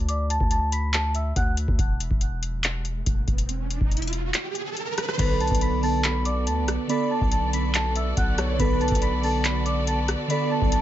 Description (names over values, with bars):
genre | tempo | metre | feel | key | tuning
hip hop, trap | 141 BPM | 4/4 | half-time | B minor | A4 = 440 Hz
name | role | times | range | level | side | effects
long sustained 808-style bass | bass | 0.0-10.8 s | E1 to D2 | -26 LUFS | equal | none
large celesta | melody | 0.1-1.5, 5.2-10.8 s | D5 to B6 | -29 LUFS | equal | ping-pong delay
booming analog drum machine | drums | 0.1-10.8 s | crash cymbal, handclaps, hi-hat, kick drum, rim click | -25 LUFS | equal | none
riser | sound effects | 2.6-5.2 s | none | -32 LUFS | right 3 dB | none
warm velvety synth lead | second line | 5.2-10.7 s | B4 to D5 | -33 LUFS | left 1 dB | chorus, ping-pong delay
glassy digital keys | accompaniment | 5.2-10.8 s | D3 to A4 | -27 LUFS | right 3 dB | chorus
rich studio string section | sustained chords | 5.2-10.8 s | B3 to D5 | -34 LUFS | left 1 dB | none
room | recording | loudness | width
little or no reverb | nothing above 7.6 kHz | -22 LUFS | side -12 dB against mid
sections
0.0-5.2 A section; 5.2-10.8 B section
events
break 0.0-5.2; riser 2.6-5.2; kick muted 4.3-5.2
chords
0.0 D5; 1.8 N.C.; 5.2 Bm7